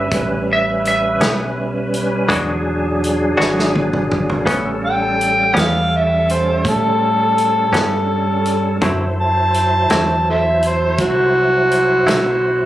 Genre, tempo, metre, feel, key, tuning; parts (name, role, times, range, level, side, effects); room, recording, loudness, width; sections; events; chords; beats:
slow blues; 55 BPM (dotted quarters); 12/8; straight; A mixolydian; A4 = 440 Hz
electric slide guitar; melody; 0.0-3.0 s; E5; -20 LUFS; right 1 dB
bright tonewheel organ; sustained chords; 0.0-12.7 s; F#3 to C5; -20 LUFS; equal; slow rotary speaker, chorus vibrato
deep dub fingered electric bass; bass; 0.0-12.7 s; E1 to A2; -22 LUFS; right 1 dB
natural country drum kit; drums; 0.1-12.3 s; hi-hat, kick drum, snare drum, toms; -22 LUFS; equal
direct-recorded clean electric guitar; accompaniment; 1.2-12.3 s; A2 to F#4; -18 LUFS; left 1 dB; tremolo
overdriven harmonica; second line; 4.9-12.7 s; F#4 to A5; -16 LUFS; equal; tape echo
moderate studio reverb, RT60 0.7 s; recorded on a phone in the room, studio reverb; -14 LUFS; side -14 dB against mid
0.0-4.5 A section; 4.5-12.7 B section
drum fill 3.4-4.5; harmonica solo 4.5-12.7
0.0 A9; 2.3 E9; 4.5 A9; 8.8 D9
| 0.12 1.21 2.30 3.39 | 4.48 5.57 6.65 7.74 | 8.83 9.91 11.00 12.08